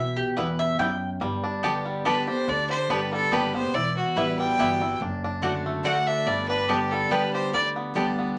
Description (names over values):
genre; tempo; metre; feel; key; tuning
bluegrass; 142 BPM; 3/4; straight; unclear; A4 = 440 Hz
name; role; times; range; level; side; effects
picked steel-string acoustic guitar; accompaniment; 0.0-8.4 s; E2 to G4; -31 LUFS; equal; none
mandolin; stabs; 0.0-8.1 s; G3 to A5; -29 LUFS; equal; none
upright bass; bass; 0.0-8.3 s; E1 to F#2; -38 LUFS; equal; none
bluegrass banjo; arpeggios; 0.4-8.4 s; G3 to G4; -34 LUFS; equal; none
clear fiddle; melody; 2.1-7.7 s; F#4 to G5; -28 LUFS; equal; none
room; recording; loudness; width
wet studio reverb, RT60 0.5 s; nothing above 10.5 kHz; -25 LUFS; mono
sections
0.0-1.2 A section; 1.2-8.4 A section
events
mandolin solo 0.0-1.2; fiddle solo 1.2-8.4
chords
0.0 Em; 1.2 Gadd9; 3.7 Emadd9; 5.0 D/F#; 6.3 Gadd9